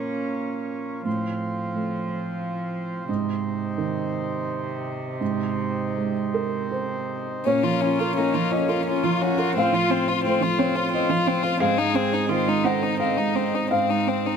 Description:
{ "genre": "neoclassical piano and strings", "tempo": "79-90 BPM", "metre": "3/4", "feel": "rubato", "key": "Bb minor", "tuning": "A4 = 438 Hz", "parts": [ { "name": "warm cello", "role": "second line", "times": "0.0-14.4 s", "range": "C3 to Ab4", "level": "-30 LUFS", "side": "right 3 dB", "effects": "tape echo" }, { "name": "felt-muted upright piano", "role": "accompaniment", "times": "0.0-14.4 s", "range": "Ab2 to Gb5", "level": "-25 LUFS", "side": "right 3 dB", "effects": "none" }, { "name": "hand-pumped harmonium", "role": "sustained chords", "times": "0.0-14.4 s", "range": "Bb3 to F5", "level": "-32 LUFS", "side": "left 1 dB", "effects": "none" }, { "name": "rich violin", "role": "melody", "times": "7.4-14.4 s", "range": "C4 to F4", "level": "-24 LUFS", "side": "left 9 dB", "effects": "none" } ], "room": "light reverb", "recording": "close, detailed microphones", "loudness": "-22 LUFS", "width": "side -6 dB against mid", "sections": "0.0-7.5 A section; 7.5-14.4 B section", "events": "none", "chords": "0.0 Bbm; 1.1 F/A; 3.1 Ab; 7.5 Bbm; 9.6 F/A; 11.6 Ab", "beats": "0.38 | 1.06 1.74 2.41 | 3.08 3.77 4.48 | 5.20 5.96 6.71 | 7.45 8.17 8.87 | 9.56 10.25 10.92 | 11.60 12.28 12.99 | 13.70" }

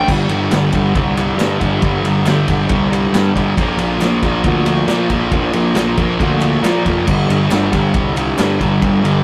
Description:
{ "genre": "garage rock duo or trio", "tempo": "137 BPM", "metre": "4/4", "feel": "straight", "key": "unclear", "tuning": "A4 = 440 Hz", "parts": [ { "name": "thick fuzz guitar", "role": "riff", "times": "0.0-9.2 s", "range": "G2 to Bb3", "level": "-19 LUFS", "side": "equal", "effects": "distortion" }, { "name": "fuzz picked electric bass", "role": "bass", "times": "0.1-9.2 s", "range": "F1 to Bb2", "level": "-20 LUFS", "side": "equal", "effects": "overdrive" }, { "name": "vintage drum kit", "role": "drums", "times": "0.1-9.2 s", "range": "crash cymbal, kick drum, ride cymbal, snare drum", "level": "-22 LUFS", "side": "equal", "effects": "none" }, { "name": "group handclap", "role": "percussion", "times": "0.5-8.5 s", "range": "none", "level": "-31 LUFS", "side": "equal", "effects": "none" } ], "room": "moderate studio reverb, RT60 0.5 s", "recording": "rough rehearsal-room recording, tube saturation", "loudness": "-15 LUFS", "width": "mono", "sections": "0.1-9.2 A section", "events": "none", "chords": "0.1 G5; 3.6 Bb; 7.1 G5", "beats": "| 0.07 0.51 0.94 1.38 | 1.82 2.25 2.69 3.13 | 3.57 4.00 4.44 4.88 | 5.32 5.76 6.20 6.63 | 7.07 7.51 7.95 8.39 | 8.83" }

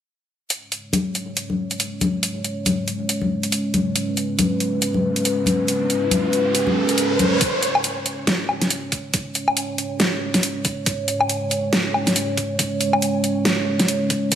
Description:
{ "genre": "deep dubstep", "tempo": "139 BPM", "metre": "4/4", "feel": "swing 58% on 16ths, half-time", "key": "unclear", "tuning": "A4 = 443 Hz", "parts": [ { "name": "dark analog pad", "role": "sustained chords", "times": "0.5-14.4 s", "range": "G#3 to C#5", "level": "-23 LUFS", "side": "right 1 dB", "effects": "wide subtle chorus" }, { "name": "dubstep drum kit", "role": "drums", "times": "0.5-14.4 s", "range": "hi-hat, snare drum, woodblock", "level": "-21 LUFS", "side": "equal", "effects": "studio reverb" }, { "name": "congas", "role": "percussion", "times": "0.9-7.3 s", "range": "none", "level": "-24 LUFS", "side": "left 3 dB", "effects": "none" }, { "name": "riser", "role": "sound effects", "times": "5.3-7.4, 14.3-14.4 s", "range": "none", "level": "-25 LUFS", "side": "right 2 dB", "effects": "none" }, { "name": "electronic kick drum", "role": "drums", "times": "7.4-14.4 s", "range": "none", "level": "-25 LUFS", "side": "equal", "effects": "high-pass filter on kick, studio reverb" } ], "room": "light reverb", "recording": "high-pass filter, lossy compression artefacts", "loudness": "-19 LUFS", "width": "side -9 dB against mid", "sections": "0.5-7.4 A section; 7.4-14.4 B section", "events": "filter sweep on analog synth pad 0.5-7.4, 7.4-14.4; riser 5.3-7.4; build-up 7.4-14.4", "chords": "0.5 C#5", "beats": "| 0.51 0.94 1.37 1.80 | 2.23 2.66 3.10 3.53 | 3.96 4.39 4.82 5.25 | 5.68 6.12 6.55 6.98 | 7.41 7.84 8.28 8.71 | 9.14 9.57 10.00 10.43 | 10.86 11.30 11.73 12.16 | 12.59 13.02 13.45 13.89 | 14.32" }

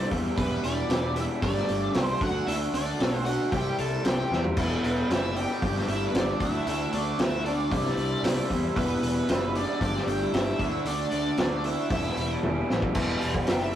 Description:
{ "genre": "classic rock", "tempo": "114 BPM", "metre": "4/4", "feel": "straight", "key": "E minor", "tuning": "A4 = 440 Hz", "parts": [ { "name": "octave-fuzz lead guitar", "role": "melody", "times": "0.0-13.7 s", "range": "B4 to A5", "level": "-32 LUFS", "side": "right 1 dB", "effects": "wah, distortion" }, { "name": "dark smooth lead guitar", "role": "second line", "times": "0.0-12.4 s", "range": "B3 to A4", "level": "-34 LUFS", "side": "right 1 dB", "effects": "overdrive" }, { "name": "overdriven reed electric piano", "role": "accompaniment", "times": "0.0-13.8 s", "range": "D4 to G5", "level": "-40 LUFS", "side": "left 3 dB", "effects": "none" }, { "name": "overdriven electric guitar", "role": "riff", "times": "0.0-13.8 s", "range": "E2 to G4", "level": "-32 LUFS", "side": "right 2 dB", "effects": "none" }, { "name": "raw garage guitar", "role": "riff", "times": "0.0-13.7 s", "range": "E2 to D4", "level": "-34 LUFS", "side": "left 4 dB", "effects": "overdrive" }, { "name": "fuzz picked electric bass", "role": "bass", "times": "0.0-13.8 s", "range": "E1 to E2", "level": "-32 LUFS", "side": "equal", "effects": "overdrive" }, { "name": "vintage drum kit", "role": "drums", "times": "0.1-13.6 s", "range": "crash cymbal, hi-hat, kick drum, snare drum, toms", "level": "-29 LUFS", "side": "equal", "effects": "none" } ], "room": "moderate studio ambience, RT60 0.5 s", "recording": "rough rehearsal-room recording, warm saturation", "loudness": "-24 LUFS", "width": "side -11 dB against mid", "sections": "0.0-13.0 A section", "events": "drum fill 4.3, 12.4-13.0", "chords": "0.4 Em; 1.4 Gsus2; 2.2 D; 3.5 Cadd9; 4.6 Em; 5.6 Gsus2; 6.4 D; 7.7 Cadd9; 8.8 Em; 9.8 Gsus2; 10.6 D; 11.9 Em", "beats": "| 0.39 0.91 1.44 1.96 | 2.48 3.01 3.53 4.05 | 4.58 5.10 5.62 6.15 | 6.67 7.20 7.72 8.24 | 8.77 9.29 9.81 10.34 | 10.86 11.39 11.91 12.44 | 12.96 13.49" }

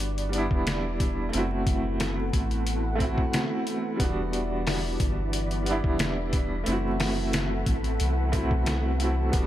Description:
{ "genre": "trip hop", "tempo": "90 BPM", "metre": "4/4", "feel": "straight", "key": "unclear", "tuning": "A4 = 440 Hz", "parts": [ { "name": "clear upright piano", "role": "accompaniment", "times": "0.0-9.5 s", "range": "G3 to F#4", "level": "-30 LUFS", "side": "right 1 dB", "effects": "tremolo, vintage 12-bit sampler grit, low-pass filter, tape echo" }, { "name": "string machine, cellos", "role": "sustained chords", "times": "0.0-9.5 s", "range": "E4 to F#5", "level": "-34 LUFS", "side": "left 1 dB", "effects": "ensemble chorus" }, { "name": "soft dub sub bass", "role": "bass", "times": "0.0-9.5 s", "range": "E1 to C2", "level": "-29 LUFS", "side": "equal", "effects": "none" }, { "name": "trip hop sampler-style drum kit", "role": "drums", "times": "0.0-9.5 s", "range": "hi-hat, kick drum, snare drum", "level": "-28 LUFS", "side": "equal", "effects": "none" }, { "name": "wind-like tuned noise texture", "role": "texture", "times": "0.0-9.5 s", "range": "B3 to B4", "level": "-40 LUFS", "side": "right 1 dB", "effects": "built-in reverb" } ], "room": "little or no reverb", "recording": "vinyl crackle", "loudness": "-24 LUFS", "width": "side -13 dB against mid", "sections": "0.0-9.5 A section", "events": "none", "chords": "0.0 Em7; 1.3 F#m7b5; 4.0 Em7; 6.7 F#m7b5", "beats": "0.00 0.67 | 1.33 2.00 2.67 3.33 | 4.00 4.67 5.33 6.00 | 6.67 7.33 8.00 8.67 | 9.33" }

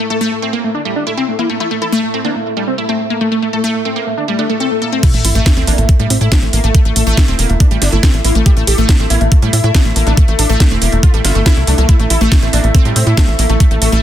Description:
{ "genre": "psychedelic trance", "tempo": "140 BPM", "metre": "4/4", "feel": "straight", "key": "unclear", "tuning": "A4 = 445 Hz", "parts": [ { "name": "wide unison lead", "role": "melody", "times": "0.0-14.0 s", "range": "A3 to G4", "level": "-19 LUFS", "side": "equal", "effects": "phaser, sidechain pumping, tape echo" }, { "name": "wide unison pluck", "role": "riff", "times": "0.0-14.0 s", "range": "G3 to A4", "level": "-19 LUFS", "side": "moving between left 4 dB and right 6 dB", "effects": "auto-pan, sidechain pumping, tape echo" }, { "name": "warbly tape-like pad", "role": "texture", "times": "0.0-14.0 s", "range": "E4 to E5", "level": "-23 LUFS", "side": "left 1 dB", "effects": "chorus, built-in reverb, sidechain pumping" }, { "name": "swell and sub drop", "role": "sound effects", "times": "4.3-6.7 s", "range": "none", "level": "-22 LUFS", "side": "left 1 dB", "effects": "none" }, { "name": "electronic kick drum", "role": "drums", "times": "5.0-13.7 s", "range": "none", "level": "-10 LUFS", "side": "equal", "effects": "small room ambience" }, { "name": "techno drum kit", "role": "drums", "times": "5.0-14.0 s", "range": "crash cymbal, hi-hat, snare drum", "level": "-18 LUFS", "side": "right 1 dB", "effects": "overdrive, low-pass filter on hats, small room ambience, low-pass filter on cymbals, low-pass filter on snare" }, { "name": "tight sequencer bass", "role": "bass", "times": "5.1-14.0 s", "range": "E1 to A2", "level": "-13 LUFS", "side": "equal", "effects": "none" } ], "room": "light reverb, digital ambience", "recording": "dense, heavily limited modern master", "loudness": "-10 LUFS", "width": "side -11 dB against mid", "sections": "0.0-5.0 A section; 5.0-14.0 B section", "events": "swell 4.3-5.0; drop 5.0-14.0; impact 5.0-6.7", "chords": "0.0 A5", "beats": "0.32 0.75 1.17 | 1.60 2.03 2.46 2.89 | 3.32 3.75 4.17 4.60 | 5.03 5.46 5.89 6.32 | 6.75 7.17 7.60 8.03 | 8.46 8.89 9.32 9.75 | 10.17 10.60 11.03 11.46 | 11.89 12.32 12.75 13.17 | 13.60" }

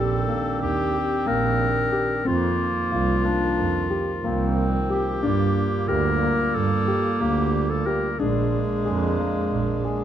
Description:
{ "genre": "contemporary instrumental, chamber music in an uneven meter", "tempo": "182 BPM (eighths)", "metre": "9/8", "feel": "straight", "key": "unclear", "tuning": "A4 = 440 Hz", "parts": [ { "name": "clear clarinet", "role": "melody", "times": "0.0-10.0 s", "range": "F4 to Bb4", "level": "-26 LUFS", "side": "left 4 dB", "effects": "none" }, { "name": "mellow clarinet", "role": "second line", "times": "0.0-10.0 s", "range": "Ab3 to D4", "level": "-28 LUFS", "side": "right 1 dB", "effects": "none" }, { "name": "hand-pumped harmonium", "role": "sustained chords", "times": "0.0-10.0 s", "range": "Eb3 to G4", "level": "-30 LUFS", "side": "equal", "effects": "none" }, { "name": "dark baby grand piano", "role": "arpeggios", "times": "0.0-10.0 s", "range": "Bb3 to Ab4", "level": "-28 LUFS", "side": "left 4 dB", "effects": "none" }, { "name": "clear double bass", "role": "bass", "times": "0.0-9.8 s", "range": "Bb1 to G2", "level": "-25 LUFS", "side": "right 4 dB", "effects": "none" } ], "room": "light reverb", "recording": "close, detailed microphones", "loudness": "-20 LUFS", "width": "side -10 dB against mid", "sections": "0.0-10.0 A section", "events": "none", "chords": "0.0 Ebmaj7; 2.3 F7sus4; 5.2 Gm7; 8.2 Bb7", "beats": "0.28 0.61 0.94 1.27 1.60 1.93 | 2.25 2.58 2.91 3.24 3.57 3.90 4.23 4.56 4.89 | 5.22 5.55 5.88 6.21 6.54 6.87 7.20 7.53 7.86 | 8.19 8.52 8.85 9.18 9.51 9.84" }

